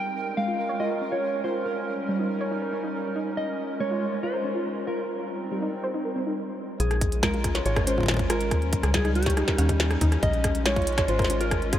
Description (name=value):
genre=IDM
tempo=140 BPM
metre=4/4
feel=straight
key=Bb dorian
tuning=A4 = 440 Hz
part: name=mellow electric guitar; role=melody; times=0.0-11.8 s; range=G4 to G5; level=-30 LUFS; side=equal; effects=wide subtle chorus, diffuse ambient delay
part: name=hollow soft pad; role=sustained chords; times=0.0-11.8 s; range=G3 to Bb4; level=-32 LUFS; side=equal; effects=chorus
part: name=pulsing gated texture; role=texture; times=0.0-6.4 s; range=Bb4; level=-41 LUFS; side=right 5 dB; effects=chorus, built-in reverb
part: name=soft round pluck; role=arpeggios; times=0.4-11.8 s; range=G3 to Db5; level=-31 LUFS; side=equal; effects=wide subtle chorus, cassette tape, diffuse ambient delay
part: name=metallic FM bass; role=bass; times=6.8-11.8 s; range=Ab1 to Eb2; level=-26 LUFS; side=equal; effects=none
part: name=glitchy drum kit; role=drums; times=6.8-11.8 s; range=hi-hat, rim click, snare drum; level=-29 LUFS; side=equal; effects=overdrive
part: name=electronic kick drum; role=drums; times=7.0-11.8 s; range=none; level=-27 LUFS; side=equal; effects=overdrive
room=wet huge ambient reverb, RT60 8.0 s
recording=dreamy mix soaked in reverb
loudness=-23 LUFS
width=side -11 dB against mid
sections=0.0-6.8 A section; 6.8-11.8 B section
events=stop 6.4-6.8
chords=0.0 Bbm7; 1.7 Eb7; 3.4 Bbm7; 5.1 Cm7; 6.8 Bbm7; 8.5 Eb7; 10.2 Bbm7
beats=0.37 0.80 1.23 | 1.66 2.09 2.51 2.94 | 3.37 3.80 4.23 4.66 | 5.09 5.51 5.94 6.37 | 6.80 7.23 7.66 8.09 | 8.51 8.94 9.37 9.80 | 10.23 10.66 11.09 11.51